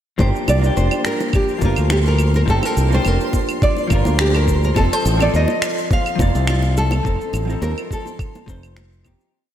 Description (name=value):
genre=sunset chillout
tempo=105 BPM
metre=4/4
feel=swing 53% on 16ths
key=G minor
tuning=A4 = 441 Hz
part: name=nylon-string guitar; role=melody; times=0.2-9.0 s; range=F4 to F5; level=-22 LUFS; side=right 1 dB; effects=digital delay, slapback echo
part: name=vintage hollow-body jazz guitar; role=accompaniment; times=0.2-9.3 s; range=F3 to D5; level=-24 LUFS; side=equal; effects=auto-pan, slapback echo
part: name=modern bright fingered electric bass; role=bass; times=0.2-9.1 s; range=F1 to Eb2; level=-17 LUFS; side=equal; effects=tube saturation
part: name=electronic kick drum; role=drums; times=0.2-9.2 s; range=none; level=-20 LUFS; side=equal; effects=none
part: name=electronic shaker, claves and finger snaps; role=drums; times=0.2-9.3 s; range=none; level=-27 LUFS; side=right 1 dB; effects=none
part: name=bongos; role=percussion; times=0.2-9.2 s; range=none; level=-30 LUFS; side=equal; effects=none
part: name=twinkling granular texture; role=texture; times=0.5-9.3 s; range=C5 to C6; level=-33 LUFS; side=left 1 dB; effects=built-in reverb
room=moderate lush hall reverb, RT60 2.1 s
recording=big arena sound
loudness=-15 LUFS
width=side -10 dB against mid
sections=0.2-9.3 groove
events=fade-out 6.3-9.3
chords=0.2 Gm7; 4.8 F7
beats=| 0.19 0.77 1.34 1.91 | 2.48 3.05 3.62 4.19 | 4.76 5.34 5.91 6.48 | 7.05 7.62 8.19 8.77